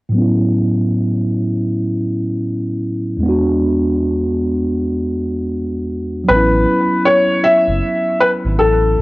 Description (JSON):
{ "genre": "hip hop", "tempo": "78 BPM", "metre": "4/4", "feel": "swing 60% on 16ths", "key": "A major", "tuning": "A4 = 440 Hz", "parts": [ { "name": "mellow tine electric piano", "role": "accompaniment", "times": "0.1-9.0 s", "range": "E2 to F#4", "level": "-16 LUFS", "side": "equal", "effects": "medium stereo tremolo, low-pass filter, cassette tape" }, { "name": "felt-muted upright piano", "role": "melody", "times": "6.3-9.0 s", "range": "A4 to E5", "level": "-13 LUFS", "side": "left 1 dB", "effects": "low-pass filter, cassette tape" }, { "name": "sub bass with octave", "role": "bass", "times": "6.3-9.0 s", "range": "F#1 to B1", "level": "-17 LUFS", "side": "equal", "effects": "none" } ], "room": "moderate spring reverb, RT60 1.8 s", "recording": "home recording on cassette", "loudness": "-14 LUFS", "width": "side -21 dB against mid", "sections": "0.1-6.3 A section; 6.3-9.0 B section", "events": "none", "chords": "0.1 A69; 3.2 E7; 6.3 A69" }